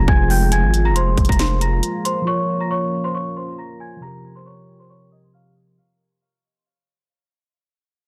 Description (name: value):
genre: hip hop, trap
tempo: 137 BPM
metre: 4/4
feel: half-time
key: unclear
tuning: A4 = 440 Hz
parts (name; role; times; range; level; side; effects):
- worn celesta; melody; 0.0-5.5 s; C5 to Bb6; -26 LUFS; equal; low-pass filter, tape echo
- mellow tine electric piano; accompaniment; 0.0-5.8 s; C3 to Db5; -30 LUFS; equal; low-pass filter
- dark analog pad; sustained chords; 0.0-5.8 s; C3 to Bb4; -30 LUFS; equal; chorus, low-pass filter
- distorted 808-style bass; bass; 0.0-1.8 s; F1 to Ab1; -20 LUFS; equal; distortion
- trap drum kit; drums; 0.1-2.2 s; hi-hat, kick drum, snare drum; -21 LUFS; equal; none
room: little or no reverb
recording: dense, heavily limited modern master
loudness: -19 LUFS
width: mono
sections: 0.0-5.8 A section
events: fade-out 0.0-5.8; filter sweep 0.0-5.8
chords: 0.0 Fm; 2.3 Bbm/F; 4.0 Eb6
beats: 0.08 | 0.52 0.95 1.39 1.83 | 2.27 2.71 3.14 3.58 | 4.02 4.46 4.90 5.33